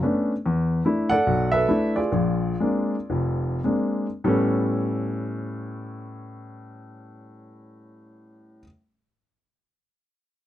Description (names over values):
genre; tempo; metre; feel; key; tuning
solo jazz; 96-150 BPM; 4/4; swing 65% on 8ths, rubato; A mixolydian; A4 = 439 Hz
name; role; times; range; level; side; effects
warm baby grand piano; solo; 0.0-8.6 s; F1 to F#5; -22 LUFS; equal; none
room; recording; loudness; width
light reverb; dry, close 1970s-style studio recording; -21 LUFS; side -12 dB against mid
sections
0.0-4.2 A section; 4.2-9.0 B section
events
slowing down 0.4-4.2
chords
0.4 E7sus4; 2.1 Bb9; 4.2 A9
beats
0.03 | 0.44 0.84 1.26 1.68 | 2.12 2.59 3.10 3.65 | 4.25 4.85 5.44 6.02 | 6.60 7.18 7.78 8.39